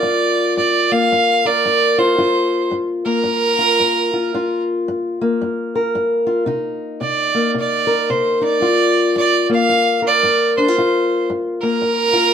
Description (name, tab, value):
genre	acoustic country blues, solo or duo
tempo	112 BPM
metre	4/4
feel	swing 61% on 8ths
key	G minor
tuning	A4 = 440 Hz
part	clear fiddle	melody	0.0-12.3 s	Bb4 to F5	-16 LUFS	right 3 dB	none
part	fingerpicked old ladder-braced acoustic guitar	accompaniment	0.0-12.3 s	G2 to Bb4	-17 LUFS	left 2 dB	none
room	moderate studio reverb, RT60 0.8 s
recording	band playing live in one room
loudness	-14 LUFS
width	side -8 dB against mid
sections	0.0-12.3 A section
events	none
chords	0.0 Gm7; 6.5 Cm7; 8.6 Gm7